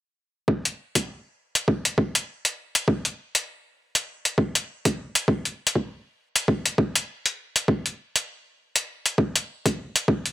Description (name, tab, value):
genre	glitch hop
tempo	100 BPM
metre	4/4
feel	swing 58% on 16ths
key	none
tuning	none
part	electronic kick drum	drums	0.5-10.2 s	none	-22 LUFS	equal	high-pass filter on kick
part	electronic hi-hat	drums	0.7-10.3 s	none	-22 LUFS	left 1 dB	none
room	digital ambience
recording	none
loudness	-23 LUFS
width	side -15 dB against mid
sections	0.5-10.3 A section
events	none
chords	none